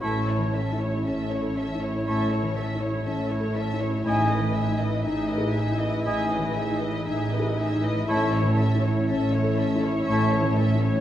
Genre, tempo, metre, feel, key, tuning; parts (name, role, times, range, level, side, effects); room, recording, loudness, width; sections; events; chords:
cinematic; 60 BPM; 4/4; rubato; A lydian; A4 = 437 Hz
muted symphonic violin section; melody; 0.0-11.0 s; C#5 to E5; -33 LUFS; left 2 dB
dark cor anglais; second line; 0.0-10.5 s; C#5 to D#5; -33 LUFS; equal
hollow small flute group; second line; 0.0-10.6 s; G#5 to A5; -32 LUFS; equal
muted symphonic violin section; second line; 0.0-11.0 s; G#4 to C#5; -35 LUFS; left 2 dB
warm clarinet; second line; 0.0-10.5 s; E4; -32 LUFS; equal
felt-muted upright piano; accompaniment; 0.0-11.0 s; A2 to A4; -28 LUFS; left 2 dB
muted symphonic viola section; accompaniment; 0.0-11.0 s; C#4 to E4; -34 LUFS; right 1 dB
warm French horn section; sustained chords; 0.0-11.0 s; G#3 to D#5; -33 LUFS; left 2 dB
muted symphonic cello section; bass; 0.0-11.0 s; A2; -29 LUFS; right 2 dB
muted symphonic double bass section; bass; 0.0-11.0 s; A1; -30 LUFS; right 3 dB
wet recital hall reverb, RT60 1.4 s; heard from further back in the room; -22 LUFS; side -12 dB against mid
0.0-11.0 A section
0.0 A; 4.1 Emaj7/A; 8.1 A